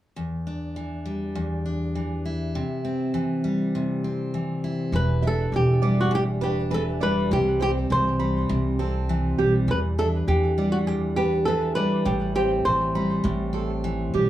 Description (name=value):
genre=pop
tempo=101 BPM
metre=4/4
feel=straight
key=E minor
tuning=A4 = 440 Hz
part: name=picked steel-string acoustic guitar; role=accompaniment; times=0.2-14.3 s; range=E2 to E4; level=-25 LUFS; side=left 1 dB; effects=none
part: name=upright bass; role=bass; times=4.9-14.3 s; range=E1 to E2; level=-26 LUFS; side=right 1 dB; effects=none
part: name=flamenco guitar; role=melody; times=5.0-14.1 s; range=F#4 to C5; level=-25 LUFS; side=equal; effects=digital delay
part: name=fingerpicked steel-string acoustic guitar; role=arpeggios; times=5.2-14.3 s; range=G4 to B5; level=-30 LUFS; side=right 5 dB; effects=none
room=light reverb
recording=small room ambience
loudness=-22 LUFS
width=side -13 dB against mid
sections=0.2-4.9 A section; 4.9-14.3 B section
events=none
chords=0.2 Em7; 2.6 C; 4.9 Em7; 7.3 C; 9.7 Em7; 12.1 Am7